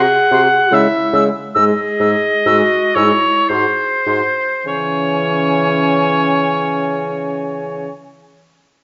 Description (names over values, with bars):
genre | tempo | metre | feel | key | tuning
classical, slow romantic movement for wind quintet | 50-76 BPM | 3/4 | rubato | C# minor | A4 = 442 Hz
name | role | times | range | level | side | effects
clear oboe | second line | 0.0-7.9 s | B#4 to F#5 | -18 LUFS | equal | none
mellow French horn | accompaniment | 0.0-7.9 s | E3 to F#4 | -25 LUFS | equal | none
mellow clarinet | accompaniment | 0.0-7.9 s | C#4 to G#4 | -23 LUFS | equal | none
dark bassoon | bass | 0.0-7.9 s | G#2 to C#3 | -23 LUFS | equal | none
silver concert flute | melody | 0.3-7.9 s | G#5 to E6 | -23 LUFS | equal | none
room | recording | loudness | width
wet recital hall reverb, RT60 1.5 s | nothing above 7.6 kHz | -15 LUFS | mono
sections
0.0-4.7 A section; 4.7-8.0 B section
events
slowing down 0.0-4.7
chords
0.0 G#7; 0.7 C#m; 1.6 Emaj13/G#; 3.5 G#7; 4.7 C#m